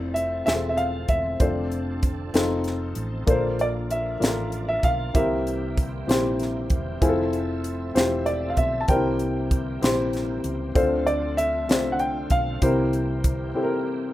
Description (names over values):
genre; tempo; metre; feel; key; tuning
slow gospel; 64 BPM (dotted quarters); 6/8; straight; F major; A4 = 440 Hz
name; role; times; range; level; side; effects
dark upright piano; accompaniment; 0.0-14.1 s; Bb2 to C5; -26 LUFS; left 2 dB; none
bright tonewheel organ; sustained chords; 0.0-14.1 s; D3 to E5; -40 LUFS; right 3 dB; fast rotary speaker, overdrive, chorus vibrato
dark French horn section; sustained chords; 0.0-14.1 s; F3 to E5; -37 LUFS; right 2 dB; none
hollow-body short-scale fingered electric bass; bass; 0.0-13.5 s; E1 to D2; -31 LUFS; right 1 dB; none
clear concert grand piano; melody; 0.1-14.1 s; C5 to A5; -26 LUFS; equal; none
crisp fusion drum kit; drums; 0.2-13.4 s; hi-hat, kick drum, snare drum; -24 LUFS; equal; none
room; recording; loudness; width
light reverb, studio ambience; rough home demo mix; -21 LUFS; side -15 dB against mid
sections
0.0-14.1 A section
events
none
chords
0.0 Fmaj7; 1.4 Dm7/F; 2.3 F7; 3.3 Bbmaj7; 5.1 C7; 7.0 Fmaj7; 8.9 C7; 10.8 Dm7; 12.6 C7